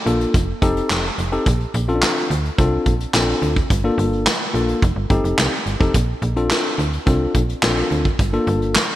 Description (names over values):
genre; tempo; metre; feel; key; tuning
early-eighties boogie funk; 107 BPM; 4/4; straight; Bb major; A4 = 444 Hz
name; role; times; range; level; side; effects
tine electric piano; accompaniment; 0.1-8.8 s; Bb3 to A4; -21 LUFS; left 2 dB; overdrive
slap-like FM bass; bass; 0.1-8.8 s; F1 to D2; -21 LUFS; right 1 dB; none
vintage brush drum kit; drums; 0.1-8.9 s; handclaps, hi-hat, kick drum, snare drum; -20 LUFS; equal; gated reverb
room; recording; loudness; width
moderate lush hall reverb, RT60 2.4 s; bright 1980s-style digital production; -16 LUFS; side -14 dB against mid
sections
0.0-9.0 A section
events
none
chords
0.3 F7; 1.5 Bbmaj9; 3.7 Gm7; 4.8 F7; 5.9 Bbmaj9; 8.2 Gm7